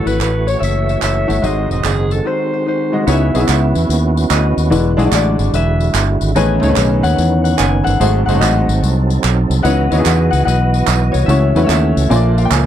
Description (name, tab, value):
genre	uptempo gospel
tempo	146 BPM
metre	4/4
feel	swing 66% on 8ths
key	C# minor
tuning	A4 = 439 Hz
part	concert harp	melody	0.0-12.7 s	C#4 to G#5	-20 LUFS	left 6 dB	none
part	growling alto saxophone	melody	0.0-3.0 s	G#4 to E5	-22 LUFS	right 3 dB	none
part	clear baby grand piano	accompaniment	0.0-12.7 s	G#2 to G#5	-17 LUFS	left 1 dB	none
part	overdriven tonewheel organ	sustained chords	0.0-12.7 s	D3 to D#5	-21 LUFS	right 5 dB	chorus vibrato, stopped rotary speaker
part	fingered electric bass	bass	0.1-12.7 s	E1 to E2	-15 LUFS	equal	none
part	tambourine and handclaps	percussion	0.1-12.6 s	none	-22 LUFS	right 7 dB	none
room	little or no reverb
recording	dry, close 1970s-style studio recording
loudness	-12 LUFS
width	side -10 dB against mid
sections	0.0-3.1 A section; 3.1-12.7 B section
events	grand piano fill 12.1-12.7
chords	0.0 F#m7; 1.4 G#7; 3.1 C#m11; 4.7 E9; 6.4 Amaj9#11; 8.0 G#7b9; 9.6 C#m11; 11.3 F#m7/C#; 12.1 A#7